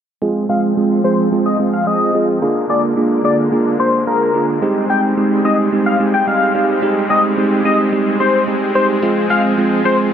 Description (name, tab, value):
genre	pop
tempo	109 BPM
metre	4/4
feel	straight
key	F dorian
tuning	A4 = 440 Hz
part	bell-like tine electric piano	accompaniment	0.2-10.1 s	Ab3 to Ab4	-15 LUFS	right 2 dB	phaser, low-pass filter
part	supersaw chords	sustained chords	0.2-10.1 s	D3 to C4	-21 LUFS	left 2 dB	low-pass filter
part	octave-doubled lead	melody	0.5-10.0 s	Bb4 to G5	-17 LUFS	left 3 dB	chorus, low-pass filter, dub echo
room	light reverb, digital ambience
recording	none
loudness	-13 LUFS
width	side -8 dB against mid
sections	0.2-10.1 A section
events	filter sweep 0.2-10.1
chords	0.2 Fm; 2.4 Bb7; 4.6 Abmaj7; 9.0 Fm